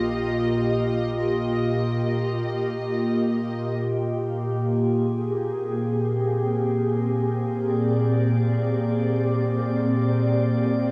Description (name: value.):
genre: ambient.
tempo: free time.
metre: none.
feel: none.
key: Bb mixolydian.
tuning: A4 = 440 Hz.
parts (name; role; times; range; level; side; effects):
glassy FM pad; sustained chords; 0.0-10.9 s; Bb2 to Eb5; -24 LUFS; equal; ensemble chorus, built-in reverb, cassette tape.
deep rumbling drone; bass; 0.0-3.7 s; Bb1; -46 LUFS; equal; built-in reverb.
clear studio violin section; texture; 0.0-3.8 s; Eb5; -37 LUFS; equal; cassette tape.
room: wet studio ambience, RT60 0.5 s.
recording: home recording on cassette, studio ambience.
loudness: -24 LUFS.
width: mono.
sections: 0.0-3.8 A section; 3.8-10.9 B section.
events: none.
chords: 0.0 Ebadd9/Bb; 3.8 Bb13.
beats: free time.